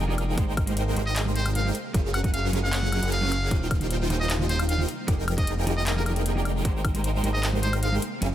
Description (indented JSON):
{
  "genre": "future bass",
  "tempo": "153 BPM",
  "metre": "4/4",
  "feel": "half-time",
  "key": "unclear",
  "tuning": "A4 = 438 Hz",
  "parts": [
    { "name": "ethereal airy pad", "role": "sustained chords", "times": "0.0-8.3 s", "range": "C3 to G5", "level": "-38 LUFS", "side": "equal", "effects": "none" },
    { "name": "supersaw chords", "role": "riff", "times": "0.0-8.3 s", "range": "Eb3 to G5", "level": "-30 LUFS", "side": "right 1 dB", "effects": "phaser, sidechain pumping" },
    { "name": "fat analog bass", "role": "bass", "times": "0.0-8.3 s", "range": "Eb1 to Ab1", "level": "-27 LUFS", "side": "equal", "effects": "sidechain pumping" },
    { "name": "clean electric guitar", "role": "accompaniment", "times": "0.1-8.3 s", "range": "Eb3 to F5", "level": "-34 LUFS", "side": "right 2 dB", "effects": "sidechain pumping, tape echo" },
    { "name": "trap drum kit", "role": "drums", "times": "0.2-8.3 s", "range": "handclaps, hi-hat, woodblock", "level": "-32 LUFS", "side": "left 2 dB", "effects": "none" },
    { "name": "electronic kick drum", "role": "drums", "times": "0.4-6.9 s", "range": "none", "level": "-25 LUFS", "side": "equal", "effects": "none" },
    { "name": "trumpet with metal mute", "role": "melody", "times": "1.1-8.0 s", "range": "Bb4 to Gb5", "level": "-32 LUFS", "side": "equal", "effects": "sidechain pumping, tape echo" }
  ],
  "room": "light reverb",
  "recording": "dense, heavily limited modern master",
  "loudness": "-23 LUFS",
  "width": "side -12 dB against mid",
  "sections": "0.0-8.3 A section",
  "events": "none",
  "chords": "0.4 Abmaj9; 1.7 Gbmaj7; 3.5 Eb6; 4.9 Fm11; 6.7 Abmaj9"
}